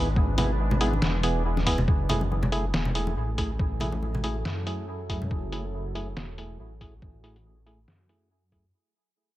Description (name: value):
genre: deep dubstep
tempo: 140 BPM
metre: 4/4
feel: swing 57% on 16ths, half-time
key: F# minor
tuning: A4 = 440 Hz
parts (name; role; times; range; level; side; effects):
- deep dark ambient pad; sustained chords; 0.0-8.7 s; F#3 to B4; -38 LUFS; right 1 dB; chorus, built-in reverb
- percussive organ stab; stabs; 0.0-8.7 s; A3 to G#4; -32 LUFS; right 2 dB; chorus, vintage 12-bit sampler grit, dub echo
- dark detuned saw bass; bass; 0.0-8.7 s; E1 to F#2; -29 LUFS; equal; none
- electronic kick drum; drums; 0.2-8.6 s; none; -27 LUFS; equal; none
- trip hop sampler-style drum kit; drums; 0.4-8.6 s; hi-hat, snare drum; -31 LUFS; left 1 dB; low-pass filter on hats, low-pass filter on snare
- congas; percussion; 0.4-5.3 s; none; -32 LUFS; left 1 dB; dub echo
room: digital ambience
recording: echo-heavy mix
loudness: -24 LUFS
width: side -15 dB against mid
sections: 0.0-1.9 A section; 1.9-8.7 B section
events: drop 0.0-1.9; fade-out 1.9-8.7; filter sweep on synth stab 1.9-8.7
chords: 0.0 E; 1.9 F#m7